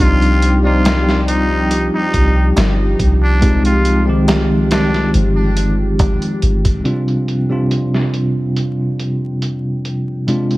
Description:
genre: trip hop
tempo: 70 BPM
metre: 4/4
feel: straight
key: unclear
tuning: A4 = 438 Hz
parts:
  - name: trumpet with straight mute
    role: melody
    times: 0.0-5.1 s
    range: D4 to F4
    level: -22 LUFS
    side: equal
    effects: vintage 12-bit sampler grit, tape echo
  - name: bell-like tine electric piano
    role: accompaniment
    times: 0.0-10.6 s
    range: C3 to D5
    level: -17 LUFS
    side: equal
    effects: harmonic tremolo, vintage 12-bit sampler grit, tape echo
  - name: dark analog pad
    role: sustained chords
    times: 0.0-10.6 s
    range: F3 to G5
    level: -24 LUFS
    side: equal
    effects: chorus
  - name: soft 808-style bass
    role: bass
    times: 0.0-6.8 s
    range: G1 to C2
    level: -15 LUFS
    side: equal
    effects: tube saturation
  - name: trip hop sampler-style drum kit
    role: drums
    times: 0.2-10.6 s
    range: hi-hat, kick drum, snare drum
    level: -19 LUFS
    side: equal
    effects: low-pass filter on kick, low-pass filter on hats, low-pass filter on snare, low-pass filter on room
  - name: darbuka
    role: percussion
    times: 0.9-6.2 s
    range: none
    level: -28 LUFS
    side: right 1 dB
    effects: none
room: little or no reverb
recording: vinyl crackle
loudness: -13 LUFS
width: side -19 dB against mid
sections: 0.0-6.9 A section; 6.9-10.6 B section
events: filter sweep on tine electric piano 0.0-6.9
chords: 0.0 Cmadd9; 3.4 Fm7/C; 6.9 G7sus4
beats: 0.85 1.71 2.57 | 3.42 4.28 5.14 6.00 | 6.85 7.71 8.57 9.42 | 10.28

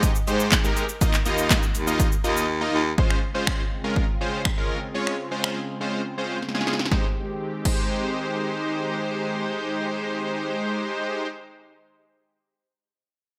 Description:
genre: dance-pop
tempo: 122 BPM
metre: 4/4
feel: straight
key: Ab major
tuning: A4 = 440 Hz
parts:
  - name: big bright polysynth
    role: accompaniment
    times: 0.0-11.3 s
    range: Ab3 to Eb5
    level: -29 LUFS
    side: equal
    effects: chorus, sidechain pumping
  - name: breathy baritone saxophone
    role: bass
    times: 0.0-2.9 s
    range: Eb2 to Ab2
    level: -28 LUFS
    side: equal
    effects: sidechain pumping
  - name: house drum kit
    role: drums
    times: 0.0-7.8 s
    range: crash cymbal, finger snaps, handclaps, hi-hat, kick drum, shaker, snare drum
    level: -25 LUFS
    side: equal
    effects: gated reverb
  - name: lush unison pad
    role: sustained chords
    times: 3.0-10.5 s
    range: Db3 to G4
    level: -36 LUFS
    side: equal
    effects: chorus, phaser, sidechain pumping
room: light reverb, digital ambience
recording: bright 1980s-style digital production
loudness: -25 LUFS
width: mono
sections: 0.0-3.0 A section; 3.0-6.9 B section; 6.9-10.8 C section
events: drums muted 2.5-3.0; drum fill 6.4-6.9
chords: 0.0 Abmaj7; 1.0 Ebsus2; 3.0 Dbmaj7; 6.9 Abmaj7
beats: 0.03 0.52 | 1.01 1.50 2.00 2.49 | 2.98 3.47 3.96 4.46 | 4.95 5.44 5.93 6.42 | 6.92 7.41 7.90 8.39 | 8.88 9.37 9.87 10.36

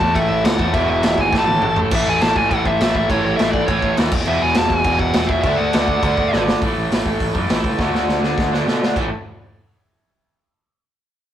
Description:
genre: punk rock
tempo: 205 BPM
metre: 4/4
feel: straight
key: unclear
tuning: A4 = 441 Hz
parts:
  - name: dark smooth lead guitar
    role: melody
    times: 0.0-6.4 s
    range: C#5 to A5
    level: -20 LUFS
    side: left 1 dB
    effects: overdrive
  - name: crunchy overdriven guitar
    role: riff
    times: 0.0-9.1 s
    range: E2 to D4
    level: -28 LUFS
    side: left 6 dB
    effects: none
  - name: overdriven electric guitar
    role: riff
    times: 0.0-9.1 s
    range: E2 to D4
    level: -21 LUFS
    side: right 3 dB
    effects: none
  - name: overdriven semi-hollow guitar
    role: riff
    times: 0.0-6.6 s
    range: E2 to D4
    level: -28 LUFS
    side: equal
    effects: none
  - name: growling picked electric bass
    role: bass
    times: 0.0-9.1 s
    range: E1 to B2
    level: -24 LUFS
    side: equal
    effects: overdrive
  - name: raw garage drum kit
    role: drums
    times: 0.0-9.0 s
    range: crash cymbal, hi-hat, kick drum, snare drum, toms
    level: -20 LUFS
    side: equal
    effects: none
room: moderate stone room reverb, RT60 1.0 s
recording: rough rehearsal-room recording, warm saturation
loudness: -15 LUFS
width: side -10 dB against mid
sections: 0.0-1.9 A section; 1.9-6.6 B section; 6.6-9.0 C section; 9.0-10.1 D section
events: drum fill 1.3-1.9, 6.3, 7.8-9.0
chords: 0.0 A5; 0.7 E; 1.3 A5; 1.9 A; 4.1 E; 5.4 D; 6.6 A5; 7.8 D5; 9.0 A5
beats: 0.16 0.45 | 0.74 1.04 1.33 1.62 | 1.92 2.21 2.50 2.80 | 3.09 3.38 3.68 3.97 | 4.26 4.55 4.85 5.14 | 5.43 5.73 6.02 6.31 | 6.61 6.90 7.19 7.49 | 7.78 8.07 8.37 8.66 | 8.95

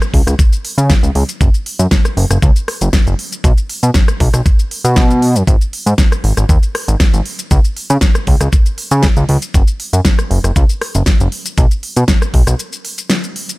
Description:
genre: nu-disco, nu disco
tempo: 118 BPM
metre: 4/4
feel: straight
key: unclear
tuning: A4 = 441 Hz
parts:
  - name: pop drum kit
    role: drums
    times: 0.0-13.6 s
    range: hi-hat, rim click, shaker, snare drum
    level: -19 LUFS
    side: left 1 dB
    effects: none
  - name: fat analog bass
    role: bass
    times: 0.1-12.5 s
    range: F#1 to C#3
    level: -12 LUFS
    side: equal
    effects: sidechain pumping
  - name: electronic kick drum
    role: drums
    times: 0.1-12.4 s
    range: none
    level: -11 LUFS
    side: equal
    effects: none
room: digital ambience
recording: none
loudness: -11 LUFS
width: side -21 dB against mid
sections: 0.0-13.6 A section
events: break 12.6-13.6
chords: none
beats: 0.39 0.90 | 1.41 1.92 2.42 2.93 | 3.44 3.95 4.46 4.97 | 5.48 5.98 6.49 7.00 | 7.51 8.02 8.53 9.04 | 9.54 10.05 10.56 11.07 | 11.58 12.09 12.60 13.10

